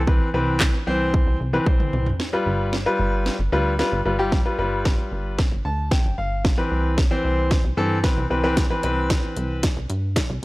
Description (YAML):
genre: dance-pop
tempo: 113 BPM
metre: 4/4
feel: straight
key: C major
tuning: A4 = 436 Hz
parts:
  - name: plucky analog bass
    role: bass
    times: 0.0-10.4 s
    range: G1 to G2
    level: -25 LUFS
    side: equal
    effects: sidechain pumping
  - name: clear baby grand piano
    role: accompaniment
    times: 0.1-9.6 s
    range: E3 to A5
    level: -23 LUFS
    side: left 1 dB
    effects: sidechain pumping
  - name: house drum kit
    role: drums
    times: 0.1-10.3 s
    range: handclaps, hi-hat, kick drum, snare drum, toms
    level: -20 LUFS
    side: equal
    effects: none
room: little or no reverb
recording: dry, gritty hardware recording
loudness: -19 LUFS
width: side -20 dB against mid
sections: 0.0-2.2 A section; 2.2-10.4 B section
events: drum fill 1.7-2.2, 2.2-10.4; build-up 2.2-10.4; grand piano fill 5.4-6.4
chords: 0.0 Cmaj7; 2.2 G7; 6.4 Cmaj7